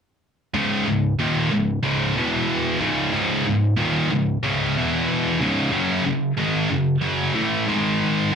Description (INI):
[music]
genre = metal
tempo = 93 BPM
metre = 4/4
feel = straight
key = C# minor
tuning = A4 = 439 Hz
[part]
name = scooped high-gain guitar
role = solo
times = 0.5-8.3 s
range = C#2 to A3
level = -19 LUFS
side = equal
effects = distortion, slapback echo
[sound]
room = light reverb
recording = dry, close 1970s-style studio recording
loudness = -19 LUFS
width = side -6 dB against mid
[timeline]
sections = 0.6-8.3 A section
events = none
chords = 0.6 C#5; 2.2 E5; 2.8 C#5; 4.8 E5; 5.4 C#5; 5.7 F#5; 7.7 G#5